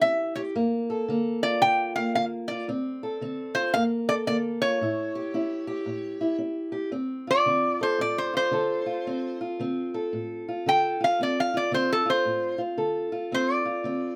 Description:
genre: acoustic country blues, solo or duo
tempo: 113 BPM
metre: 4/4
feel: swing 63% on 8ths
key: D minor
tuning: A4 = 440 Hz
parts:
  - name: lap resonator guitar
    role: melody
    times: 0.0-14.2 s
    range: A4 to G5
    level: -26 LUFS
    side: equal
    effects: none
  - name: fingerpicked steel-string acoustic guitar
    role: accompaniment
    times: 0.0-14.2 s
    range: D2 to A4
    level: -30 LUFS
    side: equal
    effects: none
room: light reverb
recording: none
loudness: -27 LUFS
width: mono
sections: 0.0-6.9 A section; 6.9-14.2 B section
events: resonator guitar played with a steel bar solo 6.9-14.2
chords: 0.0 A7 (rootless); 0.6 Gm9; 2.7 Dm7; 3.7 Gm9; 4.8 A7; 6.9 Dm7

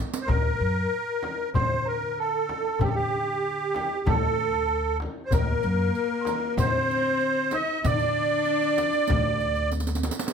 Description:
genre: Arabic maqam ensemble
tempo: 95 BPM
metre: 4/4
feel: straight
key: D maqam hijaz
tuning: A4 = 444 Hz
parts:
  - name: darbuka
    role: percussion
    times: 0.1-10.3 s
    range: none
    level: -32 LUFS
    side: left 5 dB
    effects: none
  - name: riq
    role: percussion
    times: 0.1-0.3, 5.3-10.3 s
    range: none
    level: -34 LUFS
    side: right 6 dB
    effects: none
  - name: musette accordion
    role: melody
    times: 0.2-9.7 s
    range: G4 to Eb5+25c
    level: -26 LUFS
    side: right 2 dB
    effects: plate reverb
  - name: worn celesta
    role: second line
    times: 0.3-9.7 s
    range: G5 to Eb6+25c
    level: -34 LUFS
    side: right 2 dB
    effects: none
  - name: upright bass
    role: bass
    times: 0.3-10.1 s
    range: D2 to D3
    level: -29 LUFS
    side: equal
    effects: none
  - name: frame drum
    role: percussion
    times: 0.3-10.2 s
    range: none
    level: -33 LUFS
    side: left 1 dB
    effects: none
  - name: clear cello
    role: second line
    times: 5.3-9.7 s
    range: Bb3 to Eb4+24c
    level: -30 LUFS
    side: left 8 dB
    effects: none
room: light reverb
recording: close, detailed microphones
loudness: -23 LUFS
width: side -6 dB against mid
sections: 0.3-10.3 A section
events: drum fill 0.0, 9.7-10.3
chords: none

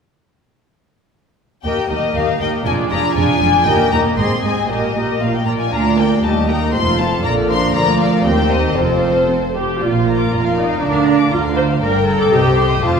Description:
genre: quick classical-period movement for string orchestra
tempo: 118 BPM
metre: 2/4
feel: straight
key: Eb major, Bb major from 5.7 s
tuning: A4 = 437 Hz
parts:
  - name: dark studio violin section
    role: melody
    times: 1.6-13.0 s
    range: C5 to C6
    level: -20 LUFS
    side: left 4 dB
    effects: none
  - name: warm studio viola section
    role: accompaniment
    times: 1.6-13.0 s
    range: D3 to C5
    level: -18 LUFS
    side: right 2 dB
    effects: none
  - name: dark studio double bass section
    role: bass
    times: 1.6-13.0 s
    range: F1 to Eb2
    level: -22 LUFS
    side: right 2 dB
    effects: none
  - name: dark studio violin section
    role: second line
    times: 1.7-13.0 s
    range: G4 to Eb6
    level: -22 LUFS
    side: left 3 dB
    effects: none
  - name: dark studio cello section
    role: bass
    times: 1.7-13.0 s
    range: D2 to D3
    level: -21 LUFS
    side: right 2 dB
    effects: none
room: wet concert hall reverb, RT60 1.8 s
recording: heard from further back in the room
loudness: -13 LUFS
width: side -6 dB against mid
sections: 1.6-9.8 A section; 9.8-13.0 B section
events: none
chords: 1.6 Eb; 2.7 Ddim/F; 3.7 Eb; 4.2 Ab; 4.7 Eb/Bb; 5.2 Bb; 5.7 Bb/D; 6.2 Eb; 6.7 F; 7.2 Bb; 7.7 Bb/D; 8.3 Cm7/Eb; 8.8 F; 9.8 Bb; 10.8 Bb/D; 11.8 Gm; 12.3 Cm

